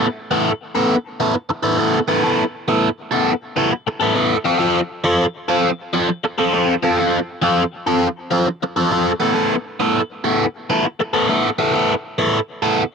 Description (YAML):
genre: rock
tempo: 101 BPM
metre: 4/4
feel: straight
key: unclear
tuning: A4 = 440 Hz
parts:
  - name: biting overdriven guitar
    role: solo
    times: 0.0-12.8 s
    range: F3 to A4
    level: -16 LUFS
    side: equal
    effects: phaser, slapback echo
room: light reverb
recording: recorded outdoors, with no room sound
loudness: -16 LUFS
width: side -6 dB against mid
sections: 0.0-12.9 A section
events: none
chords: 0.0 Asus2; 4.5 F; 9.2 Asus2